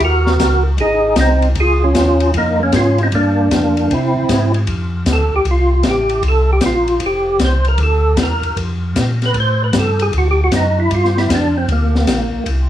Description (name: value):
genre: soul jazz organ trio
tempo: 154 BPM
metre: 4/4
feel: swing 66% on 8ths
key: unclear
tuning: A4 = 440 Hz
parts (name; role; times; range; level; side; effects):
- percussive tonewheel organ; melody; 0.0-12.4 s; Bb3 to C5; -15 LUFS; right 1 dB; slow rotary speaker, chorus vibrato
- tonewheel organ; bass; 0.0-12.7 s; F1 to C3; -16 LUFS; equal; overdrive, chorus vibrato, slow rotary speaker
- open jazz drum kit; drums; 0.0-12.6 s; hi-hat, kick drum, ride cymbal, snare drum; -21 LUFS; left 2 dB; none
room: moderate club reverb, RT60 0.5 s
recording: small room ambience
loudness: -12 LUFS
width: side -12 dB against mid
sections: 0.0-4.7 A section; 4.7-12.7 B section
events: tonewheel organ solo 4.7-12.7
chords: 0.0 Ebm7; 0.8 Ab; 1.6 Db6; 3.1 Gm7; 3.9 Caug; 4.7 Fadd9; 6.2 Gm11; 7.0 Fsus2; 7.8 Bbmaj7; 9.3 Gadd9; 10.1 D; 10.9 Gm7